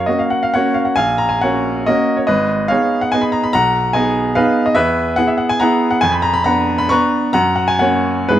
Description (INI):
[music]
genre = classical, romantic triple-time dance for piano with dotted rhythms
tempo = 119-158 BPM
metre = 3/4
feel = rubato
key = unclear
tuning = A4 = 440 Hz
[part]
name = clear baby grand piano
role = solo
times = 0.0-8.4 s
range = G#1 to C#6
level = -13 LUFS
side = equal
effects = none
[sound]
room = light reverb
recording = close, detailed microphones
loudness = -13 LUFS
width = side -11 dB against mid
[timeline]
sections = 0.0-8.4 A section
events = none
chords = 0.0 F#; 1.0 F#/A#; 2.3 G#m; 3.5 G#m/B; 4.8 E; 6.0 C#13b9/E#; 7.3 F#